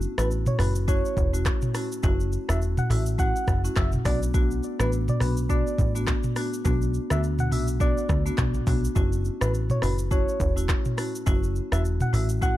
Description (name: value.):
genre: afrobeats.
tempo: 104 BPM.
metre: 4/4.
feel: swing 58% on 16ths.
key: B minor.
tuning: A4 = 440 Hz.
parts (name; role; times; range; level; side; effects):
plucky analog bass; bass; 0.0-12.6 s; E1 to D2; -25 LUFS; equal; none.
afro-pop drum kit; drums; 0.0-12.6 s; handclaps, hi-hat, kick drum, rim click, shaker, toms; -26 LUFS; equal; none.
soft struck synth lead; melody; 0.2-12.6 s; B4 to F#5; -32 LUFS; equal; chorus, ping-pong delay.
marimba with medium mallets; accompaniment; 0.2-12.6 s; A3 to F#4; -30 LUFS; left 1 dB; none.
room: little or no reverb.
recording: dark, warm production.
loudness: -22 LUFS.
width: side -15 dB against mid.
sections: 0.0-12.6 A section.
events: none.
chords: 0.0 F#m7; 4.1 Bm7; 9.0 F#m7.